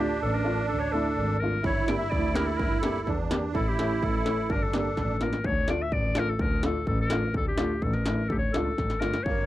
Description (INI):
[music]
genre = klezmer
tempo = 126 BPM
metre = 2/4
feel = straight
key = unclear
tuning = A4 = 442 Hz
[part]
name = bright clarinet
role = melody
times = 0.0-9.5 s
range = G4 to E5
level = -31 LUFS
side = left 3 dB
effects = none
[part]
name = musette accordion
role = second line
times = 0.0-5.2, 9.3-9.5 s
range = Bb3 to E4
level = -30 LUFS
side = right 7 dB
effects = none
[part]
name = clear upright piano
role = accompaniment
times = 0.0-9.1 s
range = A3 to G4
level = -31 LUFS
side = left 1 dB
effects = none
[part]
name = clear double bass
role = bass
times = 0.2-9.5 s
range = G1 to E2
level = -30 LUFS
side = equal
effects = none
[part]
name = industrial drum kit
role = drums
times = 1.6-9.4 s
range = kick drum, snare drum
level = -30 LUFS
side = equal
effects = distortion
[sound]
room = little or no reverb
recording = dry, close 1970s-style studio recording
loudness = -24 LUFS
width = side -14 dB against mid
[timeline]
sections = 0.0-5.4 A section; 5.4-9.5 A section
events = drum fill 5.0-5.4, 8.8-9.3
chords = 0.0 Dm; 1.6 Gm; 3.5 A; 4.5 Gm; 5.4 Dm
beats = 0.21 | 0.69 1.17 | 1.64 2.12 | 2.59 3.07 | 3.54 4.02 | 4.49 4.97 | 5.45 5.92 | 6.40 6.87 | 7.35 7.83 | 8.30 8.78 | 9.26